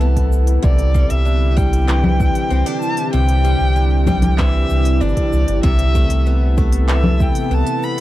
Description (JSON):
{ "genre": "folktronica", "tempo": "96 BPM", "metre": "4/4", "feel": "straight", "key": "C major", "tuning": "A4 = 441 Hz", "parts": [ { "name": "dark violin", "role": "melody", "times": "0.0-8.0 s", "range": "D5 to B5", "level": "-24 LUFS", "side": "left 1 dB", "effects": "tape echo" }, { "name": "warbly tape-like pad", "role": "sustained chords", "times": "0.0-8.0 s", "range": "C3 to A4", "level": "-24 LUFS", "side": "equal", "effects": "chorus, built-in reverb" }, { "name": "picked acoustic archtop guitar", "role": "arpeggios", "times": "0.0-8.0 s", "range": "C3 to D4", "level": "-23 LUFS", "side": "equal", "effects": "none" }, { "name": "warm sub bass", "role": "bass", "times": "0.0-7.6 s", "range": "G1 to C2", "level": "-15 LUFS", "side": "equal", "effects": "tube saturation" }, { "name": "organic electronic drum kit", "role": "drums", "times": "0.0-8.0 s", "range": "congas, handclaps, hi-hat, shaker", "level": "-22 LUFS", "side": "left 2 dB", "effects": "none" }, { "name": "electronic kick drum", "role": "drums", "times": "0.2-7.3 s", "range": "none", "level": "-19 LUFS", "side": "equal", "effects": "overdrive" } ], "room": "little or no reverb", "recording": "dry, close 1970s-style studio recording", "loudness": "-13 LUFS", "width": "side -15 dB against mid", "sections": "0.0-8.0 A section", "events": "none", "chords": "0.0 Amadd9/C; 0.6 Cadd9; 5.6 Amadd9/C" }